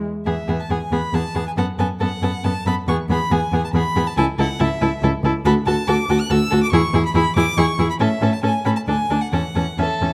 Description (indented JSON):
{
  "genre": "quick classical-period movement for string quartet",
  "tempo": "139 BPM",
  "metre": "3/4",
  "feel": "straight",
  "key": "E major, A major from 5.5 s",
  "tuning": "A4 = 439 Hz",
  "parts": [
    { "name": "clear viola", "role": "accompaniment", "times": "0.0-10.1 s", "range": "B3 to F#4", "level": "-26 LUFS", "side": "equal", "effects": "none" },
    { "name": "rich cello", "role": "bass", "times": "0.0-10.1 s", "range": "C#2 to A2", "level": "-23 LUFS", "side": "equal", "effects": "none" },
    { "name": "rich violin", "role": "melody", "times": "0.3-10.1 s", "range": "E5 to F#6", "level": "-27 LUFS", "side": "equal", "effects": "none" },
    { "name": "warm violin", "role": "second line", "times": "0.3-10.1 s", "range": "G#4 to A4", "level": "-28 LUFS", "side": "equal", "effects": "none" }
  ],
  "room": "moderate recital hall reverb, RT60 1.6 s",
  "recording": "close, detailed microphones",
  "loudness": "-20 LUFS",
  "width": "mono",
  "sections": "0.3-10.1 A section",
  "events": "none",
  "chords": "0.3 E; 1.6 B5/F#; 2.9 E; 4.2 A/C#; 5.5 D; 6.7 E; 8.0 A; 8.9 D5; 9.3 A/E"
}